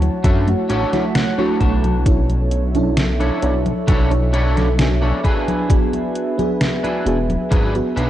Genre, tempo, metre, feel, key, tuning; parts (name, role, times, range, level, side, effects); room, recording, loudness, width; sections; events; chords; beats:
vaporwave; 66 BPM; 4/4; straight; A4 = 440 Hz
FM electric piano with soft pad layer; accompaniment; 0.0-8.1 s; A3 to G#5; -22 LUFS; right 1 dB; analog chorus, tape echo
warbly tape-like pad; sustained chords; 0.0-8.1 s; A4 to A5; -28 LUFS; right 3 dB; chorus, built-in reverb
chorused synth bass; bass; 0.0-8.1 s; E1 to F#2; -18 LUFS; equal
detuned 8-bit digital drum machine; drums; 0.0-8.1 s; congas, hi-hat, snare drum; -23 LUFS; left 1 dB; gated reverb
electric guitar at the edge of break-up; riff; 0.2-8.1 s; D4 to A5; -24 LUFS; equal; analog chorus, tape echo
electronic kick drum; drums; 0.2-7.7 s; -17 LUFS; equal
light reverb, digital ambience; cassette tape, nothing above 10.8 kHz; -15 LUFS; side -12 dB against mid
0.0-8.1 A section
clean electric guitar fill 0.2-2.1; fade-out 6.9-8.1
0.0 Dmaj7; 2.1 Bm11; 5.2 E7
0.24 1.15 | 2.06 2.97 3.88 4.79 | 5.70 6.61 7.51